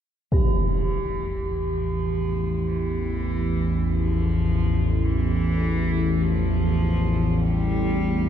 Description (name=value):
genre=dark ambient drone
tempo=51 BPM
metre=4/4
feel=straight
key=unclear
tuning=A4 = 440 Hz
part: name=analog drone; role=drone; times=0.9-8.3 s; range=A1 to E2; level=-22 LUFS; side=equal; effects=chorus, phaser
part: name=impact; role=percussion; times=0.3-0.6 s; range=none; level=-24 LUFS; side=equal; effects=low-pass filter on sfx
part: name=bronze singing bowl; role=texture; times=0.3-8.3 s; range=G4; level=-32 LUFS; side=right 4 dB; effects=shimmer reverb
part: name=rich cello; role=melody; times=0.4-8.3 s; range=E3 to G3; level=-33 LUFS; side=equal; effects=shimmer reverb, diffuse ambient delay
room=moderate lush hall reverb, RT60 2.9 s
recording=dreamy mix soaked in reverb, cassette tape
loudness=-21 LUFS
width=side -9 dB against mid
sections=0.3-8.3 A section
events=fade-in on cello 0.3-8.3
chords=0.3 A5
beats=| 0.33 1.51 2.68 3.86 | 5.04 6.21 7.39